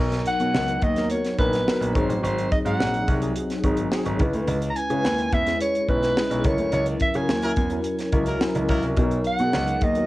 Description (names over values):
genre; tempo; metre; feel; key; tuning
polished 1980s jazz-funk pop; 107 BPM; 4/4; straight; B major; A4 = 441 Hz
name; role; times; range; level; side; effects
mellow tine electric piano; accompaniment; 0.0-10.1 s; F#3 to C#5; -26 LUFS; left 1 dB; medium stereo tremolo, ensemble chorus, cassette tape
clear concert grand piano; bass; 0.0-10.0 s; G#1 to C#3; -26 LUFS; equal; none
tight funk drum kit; drums; 0.1-10.1 s; hi-hat, kick drum, snare drum; -26 LUFS; equal; cassette tape
warm soprano saxophone; melody; 0.3-10.1 s; B4 to A#5; -25 LUFS; right 1 dB; cassette tape
warm horn section; second line; 7.4-8.9 s; F#3 to A#4; -29 LUFS; equal; cassette tape
room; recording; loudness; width
moderate studio reverb, RT60 0.5 s; home recording on cassette; -20 LUFS; side -17 dB against mid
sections
0.0-10.1 A section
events
band accent 6.7-9.0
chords
0.0 Bmaj7; 1.9 G#7; 4.2 C#m7; 6.4 F#7/C#; 9.0 Bmaj7